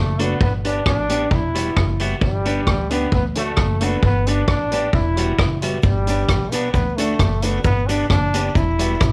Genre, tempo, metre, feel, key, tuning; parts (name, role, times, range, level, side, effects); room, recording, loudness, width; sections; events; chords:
ska; 132 BPM; 4/4; swing 53% on 8ths; G major; A4 = 440 Hz
bright trombone; melody; 0.0-9.1 s; G3 to E4; -26 LUFS; equal
upright bass; bass; 0.0-9.1 s; E1 to D2; -25 LUFS; equal
electric guitar at the edge of break-up; accompaniment; 0.2-8.9 s; G3 to G4; -29 LUFS; equal; slapback echo
dark upright piano; stabs; 0.2-9.1 s; D4 to E5; -32 LUFS; equal
street-band drum kit; drums; 0.2-9.1 s; hi-hat, kick drum, rim click; -22 LUFS; equal
cabasa; percussion; 5.8-9.1 s; -43 LUFS; equal
light reverb, studio ambience; -19 LUFS; mono
0.0-9.1 A section
0.4 G; 1.3 Emadd9; 2.2 G; 3.1 D; 4.0 G; 4.9 Emadd9; 5.8 G; 6.7 D; 7.7 G; 8.6 Emadd9